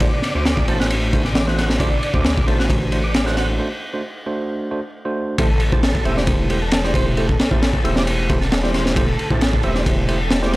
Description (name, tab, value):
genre	breakbeat, breaks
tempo	134 BPM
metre	4/4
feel	straight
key	A dorian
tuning	A4 = 440 Hz
part	tonewheel organ	riff	0.0-10.6 s	A3 to D5	-27 LUFS	equal	chorus vibrato, slow rotary speaker, overdrive, analog delay
part	tine electric piano	stabs	0.0-10.6 s	A3 to C5	-25 LUFS	right 2 dB	analog delay
part	phased detuned saw bass	bass	0.0-10.6 s	E1 to D2	-22 LUFS	equal	phaser
part	crunchy breakbeat drum kit	drums	0.0-10.6 s	kick drum, ride cymbal, snare drum	-19 LUFS	equal	none
room	small room ambience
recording	dry, gritty hardware recording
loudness	-16 LUFS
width	side -19 dB against mid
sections	0.0-5.4 A section; 5.4-10.6 B section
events	break 3.6-5.4; drop 5.4-10.6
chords	0.0 D7; 5.4 Am7